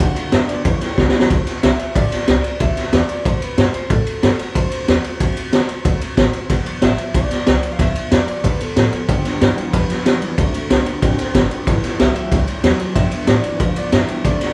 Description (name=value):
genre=rockabilly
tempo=186 BPM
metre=4/4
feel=straight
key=D mixolydian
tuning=A4 = 440 Hz
part: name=electric guitar through a small old amp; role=melody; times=0.0-14.5 s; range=G4 to F#5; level=-29 LUFS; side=equal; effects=spring reverb
part: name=picked steel-string acoustic guitar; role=accompaniment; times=0.0-14.5 s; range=G2 to G4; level=-31 LUFS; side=equal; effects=none
part: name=electric guitar through a small old amp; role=riff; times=0.0-1.3, 9.1-14.5 s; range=G2 to C4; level=-28 LUFS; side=equal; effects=phaser
part: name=upright bass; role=bass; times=0.0-14.4 s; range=G1 to D3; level=-25 LUFS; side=equal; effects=none
part: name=raw garage drum kit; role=drums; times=0.0-14.5 s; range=kick drum, ride cymbal, snare drum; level=-19 LUFS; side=equal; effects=none
room=light reverb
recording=band playing live in one room, vinyl crackle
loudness=-17 LUFS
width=mono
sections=0.0-1.3 A section; 1.3-14.5 A section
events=drum fill 1.0-1.3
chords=0.0 D7; 0.7 A7; 1.3 D7; 6.5 G7; 10.4 D7; 11.7 A7; 13.0 G7